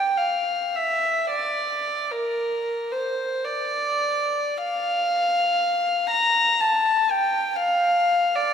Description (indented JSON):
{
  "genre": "classical, free, expressive piece for unaccompanied violin",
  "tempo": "52-61 BPM",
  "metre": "3/4",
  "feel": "rubato",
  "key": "D minor",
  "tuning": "A4 = 440 Hz",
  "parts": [
    { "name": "warm violin", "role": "solo", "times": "0.0-8.5 s", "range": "Bb4 to Bb5", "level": "-20 LUFS", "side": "left 1 dB", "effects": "none" }
  ],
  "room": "wet church reverb, RT60 3.2 s",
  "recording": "minimal, uncompressed stereo recording",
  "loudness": "-20 LUFS",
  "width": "side -7 dB against mid",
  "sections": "0.0-8.5 A section",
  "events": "none",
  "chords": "none",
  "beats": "0.19 | 1.32 2.39 3.46 | 4.58 5.61 6.61 | 7.60"
}